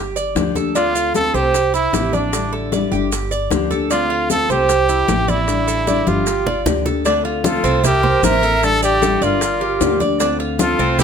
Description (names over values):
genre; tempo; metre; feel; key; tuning
latin, Cuban son and guajira; 152 BPM; 4/4; straight; D minor; A4 = 439 Hz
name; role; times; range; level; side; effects
Cuban tres; arpeggios; 0.0-11.0 s; C4 to D5; -21 LUFS; right 3 dB; none
upright bass; bass; 0.0-11.0 s; G1 to D2; -24 LUFS; right 1 dB; none
congas; percussion; 0.2-11.0 s; none; -24 LUFS; left 2 dB; none
maracas; percussion; 0.2-11.0 s; none; -28 LUFS; right 7 dB; none
nylon-string guitar; accompaniment; 0.4-11.0 s; C3 to G4; -23 LUFS; left 6 dB; none
bongos; percussion; 0.4-11.0 s; none; -26 LUFS; left 6 dB; none
clear trumpet; melody; 0.8-11.0 s; D4 to Bb4; -18 LUFS; right 1 dB; none
breathy bright jazz flute; second line; 7.4-11.0 s; A4 to E5; -24 LUFS; left 4 dB; none
room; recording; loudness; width
moderate studio reverb, RT60 1.0 s; none; -15 LUFS; side -7 dB against mid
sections
0.0-7.1 A section; 7.1-11.0 B section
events
drum fill 6.1-7.1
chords
0.0 Gm7; 0.8 Dm7; 1.5 C7; 2.3 A7sus4; 3.1 Gm7; 3.9 Dm7; 4.7 C7; 5.5 A7sus4; 6.3 Gm7; 7.1 Dm7; 7.8 C7; 8.6 A7sus4; 9.4 Gm7; 10.2 Dm7